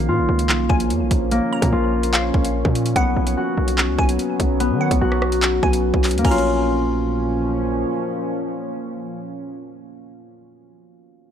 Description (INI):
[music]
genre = hip hop, drill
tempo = 146 BPM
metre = 4/4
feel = half-time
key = Bb phrygian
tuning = A4 = 440 Hz
[part]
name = glassy wavetable pluck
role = second line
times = 0.0-7.4 s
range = F5 to Bb5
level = -28 LUFS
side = right 1 dB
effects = chorus, analog delay
[part]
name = deep dark ambient pad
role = sustained chords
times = 0.0-10.3 s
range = Bb2 to Db4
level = -25 LUFS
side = equal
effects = chorus, built-in reverb
[part]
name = concert harp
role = arpeggios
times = 0.0-10.5 s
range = Bb3 to F#4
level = -22 LUFS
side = left 2 dB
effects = low-pass filter, analog delay
[part]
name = hard-hitting 808-style bass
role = bass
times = 0.0-7.8 s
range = Bb1 to Eb3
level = -22 LUFS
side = equal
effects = none
[part]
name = drill drum kit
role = drums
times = 0.4-6.4 s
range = crash cymbal, handclaps, hi-hat, kick drum, rim click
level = -21 LUFS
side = equal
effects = none
[sound]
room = little or no reverb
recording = dry, gritty hardware recording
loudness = -17 LUFS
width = side -8 dB against mid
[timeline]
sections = 0.0-6.2 A section; 6.2-9.5 B section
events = none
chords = 0.0 Bbm; 3.0 Bsus2; 6.2 Bbm